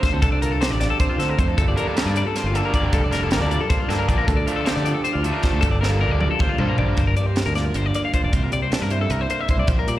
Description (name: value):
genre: math rock and midwest emo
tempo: 311 BPM (eighths)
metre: 7/8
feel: straight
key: G minor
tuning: A4 = 440 Hz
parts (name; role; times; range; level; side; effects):
- electric guitar through a small old amp; accompaniment; 0.0-10.0 s; G2 to C5; -28 LUFS; right 4 dB; slapback echo
- twelve-string electric guitar; arpeggios; 0.0-10.0 s; F4 to F5; -25 LUFS; left 5 dB; tape echo, slapback echo
- crisp fusion drum kit; drums; 0.0-10.0 s; hi-hat, kick drum, snare drum, toms; -23 LUFS; equal; none
- growling fingered electric bass; bass; 0.1-10.0 s; F1 to D3; -22 LUFS; equal; overdrive
- overdriven semi-hollow guitar; riff; 1.8-7.0 s; D3 to D4; -27 LUFS; equal; slapback echo
room: small room ambience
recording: live gig heard through the venue's PA, recital hall reverb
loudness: -18 LUFS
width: side -14 dB against mid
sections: 0.0-7.0 A section; 7.0-10.0 B section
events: drum fill 5.8-7.0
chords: 0.0 Dm7; 1.6 Gm9; 4.3 Dm7; 5.6 Gm9; 7.0 Gm7; 8.3 C7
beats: 0.04 | 0.23 0.42 0.62 0.81 1.00 1.20 1.39 | 1.58 1.77 1.97 2.16 2.35 2.55 2.74 | 2.93 3.13 3.32 3.51 3.71 3.90 4.09 | 4.28 4.48 4.67 4.86 5.05 5.25 5.44 | 5.63 5.83 6.02 6.21 6.41 6.60 6.79 | 6.99 7.18 7.37 7.56 7.76 7.95 8.14 | 8.34 8.53 8.72 8.92 9.11 9.30 9.49 | 9.69 9.88